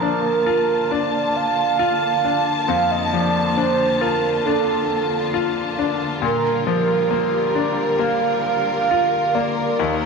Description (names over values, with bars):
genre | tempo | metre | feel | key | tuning
pop | 68 BPM | 4/4 | straight | G minor | A4 = 440 Hz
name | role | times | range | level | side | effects
mellow horn-like synth lead | melody | 0.0-10.1 s | A4 to F5 | -20 LUFS | right 6 dB | chorus, tape echo
bright grand piano | accompaniment | 0.0-10.1 s | Eb2 to F4 | -23 LUFS | left 9 dB | none
rich studio string section | sustained chords | 0.0-10.1 s | D3 to A5 | -23 LUFS | left 1 dB | none
room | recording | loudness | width
wet echo chamber reverb, RT60 1.5 s | 1960s-style stereo with parts hard left and right | -17 LUFS | side -4 dB against mid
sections
0.0-10.1 A section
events
none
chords
0.0 Bbmaj7; 6.2 Gm7/Bb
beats
0.01 0.91 1.79 | 2.68 3.57 4.46 5.34 | 6.23 7.11 8.00 8.89 | 9.79